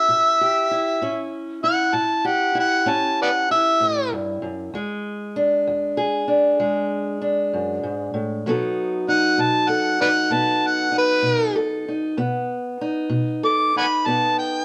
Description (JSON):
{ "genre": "acoustic country blues, solo or duo", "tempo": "64 BPM (dotted quarters)", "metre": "12/8", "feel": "straight", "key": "unclear", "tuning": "A4 = 438 Hz", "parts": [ { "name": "overdriven harmonica", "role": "melody", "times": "0.0-14.6 s", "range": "B4 to D6", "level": "-21 LUFS", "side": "equal", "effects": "plate reverb" }, { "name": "fingerpicked steel-string acoustic guitar", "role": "accompaniment", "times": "0.0-14.6 s", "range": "E2 to A4", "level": "-25 LUFS", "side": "equal", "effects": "none" } ], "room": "moderate studio reverb, RT60 0.8 s", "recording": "none", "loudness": "-21 LUFS", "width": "mono", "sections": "0.0-14.6 A section", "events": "none", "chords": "0.0 A7; 4.7 E7; 8.5 B7", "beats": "0.09 | 1.02 1.95 2.88 3.81 | 4.74 5.67 6.60 7.53 | 8.46 9.39 10.32 11.25 | 12.18 13.12 14.05" }